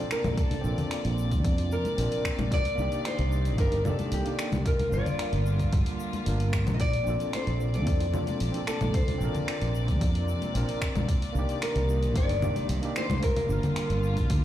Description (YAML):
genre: sunset chillout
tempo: 112 BPM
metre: 4/4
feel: straight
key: Bb major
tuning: A4 = 440 Hz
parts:
  - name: nylon-string guitar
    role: melody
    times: 0.0-14.4 s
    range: G4 to Eb5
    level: -32 LUFS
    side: left 1 dB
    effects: digital delay
  - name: overdriven tine electric piano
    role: accompaniment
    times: 0.0-14.4 s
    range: Bb3 to Bb4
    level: -36 LUFS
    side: right 1 dB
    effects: fast tremolo, auto-pan, digital delay
  - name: rich studio string section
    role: sustained chords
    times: 0.0-14.4 s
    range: C3 to D5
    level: -35 LUFS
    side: equal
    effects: none
  - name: deep house drum kit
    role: drums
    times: 0.1-14.4 s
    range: congas, finger snaps, hi-hat, shaker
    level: -35 LUFS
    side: left 1 dB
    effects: none
  - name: fretless electric bass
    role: bass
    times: 0.2-14.4 s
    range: G1 to G2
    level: -27 LUFS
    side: equal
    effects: none
  - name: congas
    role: percussion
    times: 0.2-13.7 s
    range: none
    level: -35 LUFS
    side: left 2 dB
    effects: none
  - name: electronic kick drum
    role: drums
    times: 0.4-14.4 s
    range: none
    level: -27 LUFS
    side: equal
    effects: none
room: little or no reverb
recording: played on a big sound system in a bare room, stone room reverb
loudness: -25 LUFS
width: side -12 dB against mid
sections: 0.0-14.4 A section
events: none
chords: 0.0 Bbmaj9; 2.5 Cm9; 4.7 Gm7; 6.8 Bbmaj9; 11.1 Cm9; 13.2 Gm7